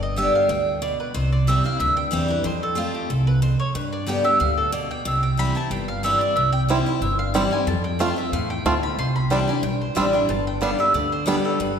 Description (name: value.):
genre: bluegrass.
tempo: 184 BPM.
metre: 4/4.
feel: straight.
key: C major.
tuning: A4 = 438 Hz.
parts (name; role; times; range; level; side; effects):
mandolin; melody; 0.0-11.8 s; F4 to C6; -25 LUFS; right 1 dB; none.
picked steel-string acoustic guitar; accompaniment; 0.0-11.8 s; E2 to G4; -24 LUFS; equal; none.
upright bass; bass; 0.0-11.8 s; G1 to G2; -24 LUFS; equal; none.
bluegrass banjo; arpeggios; 6.7-11.4 s; G3 to F4; -25 LUFS; right 2 dB; none.
room: wet concert hall reverb, RT60 1.8 s.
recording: recorded in a church or concert hall.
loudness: -19 LUFS.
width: side -7 dB against mid.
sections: 0.0-11.8 A section.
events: none.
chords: 0.0 G; 1.1 C; 2.5 F; 3.8 G; 5.1 C; 7.7 F; 9.0 Cadd9; 10.3 G.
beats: 0.17 0.50 0.82 | 1.15 1.48 1.80 2.13 | 2.45 2.78 3.10 3.43 | 3.75 4.08 4.41 4.73 | 5.06 5.38 5.71 6.04 | 6.36 6.69 7.02 7.34 | 7.67 8.00 8.33 8.65 | 8.98 9.31 9.64 9.96 | 10.29 10.62 10.94 11.27 | 11.60.